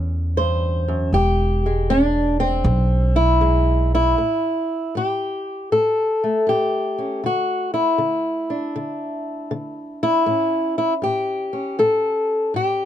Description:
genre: acoustic country blues, solo or duo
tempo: 79 BPM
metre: 4/4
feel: swing 66% on 8ths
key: A mixolydian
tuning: A4 = 439 Hz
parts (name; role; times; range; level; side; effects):
- fingerpicked old ladder-braced acoustic guitar; melody; 0.0-12.9 s; E2 to C5; -19 LUFS; left 1 dB; none
- upright bass; bass; 0.0-4.1 s; E1 to E2; -19 LUFS; right 1 dB; none
room: little or no reverb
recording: close, detailed microphones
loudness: -18 LUFS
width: side -10 dB against mid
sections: 0.0-4.2 A section; 4.2-12.9 B section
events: steel-string acoustic guitar solo 0.0-4.2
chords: 0.0 A; 1.1 E; 4.2 A5; 7.2 N.C.; 10.3 A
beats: 0.37 | 1.13 1.89 2.65 3.41 | 4.17 4.93 5.70 6.46 | 7.22 7.98 8.74 9.50 | 10.27 11.03 11.79 12.55

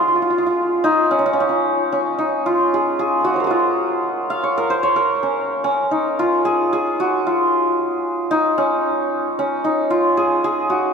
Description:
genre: indian classical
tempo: 112 BPM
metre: 7/4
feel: straight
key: Db raga bilaval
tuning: A4 = 440 Hz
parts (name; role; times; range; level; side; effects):
- santur; solo; 0.0-10.9 s; Db4 to Ab5; -16 LUFS; equal; none
room: wet cathedral reverb, RT60 5.5 s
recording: recorded in a church or concert hall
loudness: -16 LUFS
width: side -6 dB against mid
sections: 0.0-10.9 A section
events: none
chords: none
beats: 0.30 0.83 1.37 1.91 2.44 2.98 | 3.51 4.05 4.58 5.12 5.65 6.18 6.72 | 7.25 7.78 8.31 8.85 9.38 9.90 10.44

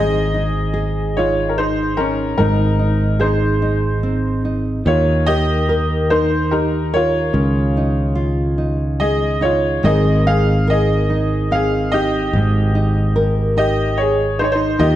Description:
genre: acoustic folk-pop ballad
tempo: 73 BPM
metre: 3/4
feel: straight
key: Ab major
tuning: A4 = 440 Hz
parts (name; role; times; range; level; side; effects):
- bright upright piano; melody; 0.0-15.0 s; Db4 to F5; -19 LUFS; equal; none
- nylon-string guitar; accompaniment; 0.0-15.0 s; Ab2 to Bb4; -20 LUFS; right 1 dB; none
- fretless electric bass; bass; 0.0-15.0 s; Ab1 to Eb2; -20 LUFS; equal; none
room: moderate recital hall reverb, RT60 1.4 s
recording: dark, warm production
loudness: -15 LUFS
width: side -13 dB against mid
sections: 0.0-15.0 A section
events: none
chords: 0.0 Abadd9; 4.9 Ebadd9; 7.3 Dbadd9; 9.8 Abadd9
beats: 0.76 1.58 | 2.40 3.23 4.05 | 4.87 5.69 6.51 | 7.34 8.17 9.00 | 9.83 10.67 11.50 | 12.33 13.15 13.98 | 14.80

